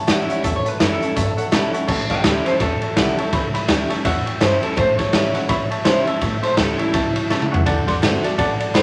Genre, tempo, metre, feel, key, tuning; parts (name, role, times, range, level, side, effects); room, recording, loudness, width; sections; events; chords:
rockabilly; 166 BPM; 4/4; swing 60% on 8ths; A mixolydian; A4 = 439 Hz
electric guitar through a small old amp; melody; 0.0-8.8 s; E4 to G5; -25 LUFS; equal
bright upright piano; accompaniment; 0.0-8.8 s; C#5 to C6; -28 LUFS; equal
picked steel-string acoustic guitar; accompaniment; 0.0-8.8 s; E2 to F#4; -27 LUFS; equal
upright bass; bass; 0.1-8.8 s; F#1 to C#3; -31 LUFS; equal
raw garage drum kit; drums; 0.1-8.8 s; crash cymbal, hi-hat, kick drum, ride cymbal, snare drum, toms; -22 LUFS; equal
moderate large studio reverb, RT60 1.3 s; -19 LUFS; mono
0.0-1.9 A section; 1.9-8.8 B section
upright piano fill 1.3-1.9; clean electric guitar solo 1.9-8.8; drum fill 7.3-7.7
0.0 A7; 7.7 D7